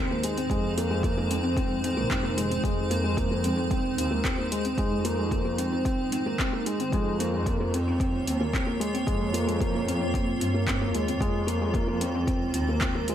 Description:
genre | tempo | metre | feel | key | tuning
piano and strings electronica | 112 BPM | 4/4 | straight | F minor | A4 = 437 Hz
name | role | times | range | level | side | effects
granular cloud pad | sustained chords | 0.0-13.1 s | Ab3 to Db5 | -32 LUFS | right 1 dB | built-in reverb, sidechain pumping
felt-muted upright piano | riff | 0.0-13.1 s | Ab3 to C4 | -28 LUFS | left 1 dB | digital delay
deep house drum kit | drums | 0.2-13.1 s | handclaps, hi-hat | -34 LUFS | equal | overdrive
warm chamber double bass section | bass | 0.5-12.8 s | F1 to G2 | -30 LUFS | equal | sidechain pumping
electronic kick drum | drums | 0.5-12.9 s | none | -30 LUFS | equal | overdrive
room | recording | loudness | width
light reverb | none | -24 LUFS | side -10 dB against mid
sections
0.0-13.1 A section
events
none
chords
0.0 Fm; 2.6 Ab; 6.9 Bbm; 11.2 Fm

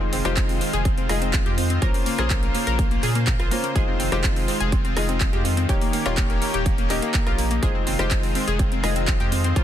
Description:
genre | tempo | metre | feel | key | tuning
progressive house | 124 BPM | 4/4 | straight | F minor | A4 = 440 Hz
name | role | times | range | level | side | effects
lush unison pad | sustained chords | 0.0-9.6 s | Db3 to C5 | -29 LUFS | right 1 dB | chorus, sidechain pumping
analog pluck | arpeggios | 0.0-9.6 s | Bb3 to Bb4 | -28 LUFS | left 1 dB | chorus, sidechain pumping, digital delay
warm grand piano | stabs | 0.0-9.6 s | Ab3 to Eb5 | -28 LUFS | left 5 dB | sidechain pumping, digital delay
saturated sub bass | bass | 0.0-9.6 s | Eb1 to Bb2 | -26 LUFS | equal | tube saturation, sidechain pumping
big-room dance drum kit | drums | 0.1-9.6 s | handclaps, hi-hat, rim click | -29 LUFS | right 1 dB | none
electronic kick drum | drums | 0.4-9.6 s | none | -23 LUFS | equal | none
room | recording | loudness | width
little or no reverb | dense, heavily limited modern master | -19 LUFS | side -10 dB against mid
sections
0.0-9.6 A section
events
none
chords
0.0 Fm7; 1.8 Bbmadd9; 3.8 Fm7; 5.7 Eb7; 7.6 Fm7

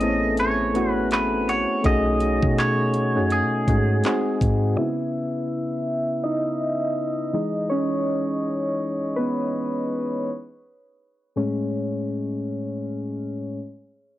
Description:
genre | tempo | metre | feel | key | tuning
contemporary R&B | 82 BPM | 4/4 | swing 58% on 16ths | unclear | A4 = 440 Hz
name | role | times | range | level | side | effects
clean electric guitar | melody | 0.0-4.4 s | G#4 to D#5 | -25 LUFS | right 1 dB | tape echo
soft electric-piano-like synth keys | accompaniment | 0.0-13.6 s | A2 to E5 | -23 LUFS | equal | chorus, low-pass filter, cassette tape
soft 808-style bass | bass | 0.0-4.8 s | A1 to B2 | -25 LUFS | equal | none
trap drum kit | drums | 0.0-4.6 s | handclaps, hi-hat, kick drum | -26 LUFS | equal | cassette tape
soft round pluck | texture | 1.5-2.2 s | F#5 | -37 LUFS | left 5 dB | none
room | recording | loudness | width
little or no reverb | home recording on cassette | -21 LUFS | side -14 dB against mid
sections
0.0-4.8 A section; 4.8-14.2 B section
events
synth keys solo 4.8-14.2; filter sweep on synth keys 4.8-14.2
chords
0.0 Amaj7; 1.8 B13; 4.0 G#7; 4.8 C#m7; 7.3 Emaj7; 10.3 Amaj7; 13.6 N.C.

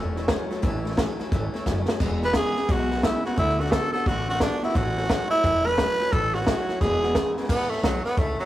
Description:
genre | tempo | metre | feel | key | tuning
rockabilly | 175 BPM | 4/4 | swing 64% on 8ths | A major | A4 = 438 Hz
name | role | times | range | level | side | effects
picked steel-string acoustic guitar | accompaniment | 0.0-8.5 s | E2 to F#4 | -33 LUFS | left 2 dB | none
electric guitar through a small old amp | riff | 0.0-7.5 s | E2 to B3 | -32 LUFS | equal | none
upright bass | bass | 0.0-8.4 s | E1 to D2 | -29 LUFS | equal | none
compact cocktail drum kit | drums | 0.2-8.4 s | crash cymbal, hi-hat, kick drum, snare drum, splash cymbal | -26 LUFS | equal | none
growling tenor saxophone | melody | 2.2-8.5 s | F#3 to B4 | -24 LUFS | right 1 dB | none
room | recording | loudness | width
moderate stone room reverb, RT60 0.9 s | rough rehearsal-room recording, warm saturation | -21 LUFS | side -14 dB against mid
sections
0.0-7.5 A section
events
drum fill 1.7-2.0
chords
0.0 A; 2.0 E; 3.4 D; 4.8 A; 6.8 E; 7.5 A

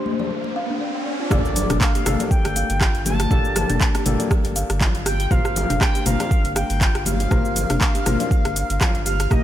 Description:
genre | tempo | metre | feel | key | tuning
afro house | 120 BPM | 4/4 | swing 56% on 16ths | G minor | A4 = 440 Hz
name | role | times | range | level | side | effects
expressive synth lead | melody | 0.0-9.4 s | C5 to A5 | -28 LUFS | equal | lush chorus, ping-pong delay
buzzing kalimba | arpeggios | 0.0-9.4 s | D4 to F5 | -29 LUFS | right 1 dB | vintage 12-bit sampler grit, sidechain pumping, ping-pong delay
riser and impact | sound effects | 0.0-3.3 s | none | -28 LUFS | right 2 dB | none
congas | percussion | 0.1-9.4 s | none | -28 LUFS | left 5 dB | none
felt-muted upright piano | stabs | 1.3-9.4 s | Bb3 to Bb4 | -30 LUFS | left 3 dB | sidechain pumping, ping-pong delay
warm sub bass | bass | 1.3-9.4 s | F1 to G1 | -24 LUFS | equal | sidechain pumping
afro-pop drum kit | drums | 1.3-9.4 s | cabasa, handclaps, hi-hat, rim click, toms | -24 LUFS | equal | none
electronic kick drum | drums | 1.3-9.4 s | none | -20 LUFS | equal | none
room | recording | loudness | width
little or no reverb | none | -18 LUFS | side -12 dB against mid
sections
0.0-1.3 A section; 1.3-9.4 B section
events
riser 0.0-1.3; filter sweep 0.0-1.3; drop 1.3-9.4; impact 1.3-3.3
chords
0.0 N.C.; 1.3 Gmadd9; 5.3 Bbsus2

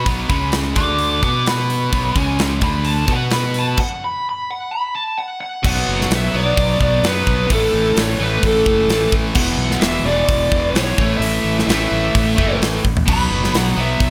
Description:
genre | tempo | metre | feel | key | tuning
hard rock | 129 BPM | 4/4 | straight | B dorian | A4 = 440 Hz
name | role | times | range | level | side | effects
bluesy overdriven lead guitar | melody | 0.0-14.1 s | A4 to D6 | -23 LUFS | equal | distortion, slapback echo
cranked stack guitar | riff | 0.0-14.1 s | E2 to B4 | -22 LUFS | equal | overdrive, spring reverb
fuzz fingered electric bass | bass | 0.1-14.1 s | E1 to B2 | -24 LUFS | equal | overdrive
tight metal drum kit | drums | 0.1-14.1 s | crash cymbal, hi-hat, kick drum, snare drum, toms | -23 LUFS | equal | none
room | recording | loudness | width
small room ambience | none | -17 LUFS | mono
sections
0.0-5.6 A section; 5.6-14.1 B section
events
lead electric guitar solo 0.0-5.6; stop 3.8-5.6; drum fill 12.8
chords
0.3 C#5; 0.8 D5; 1.2 B5; 2.2 C#5; 2.6 D5; 3.1 B5; 4.0 N.C.; 5.6 Bm; 7.5 A5; 9.4 E5; 11.0 A5; 13.1 B5

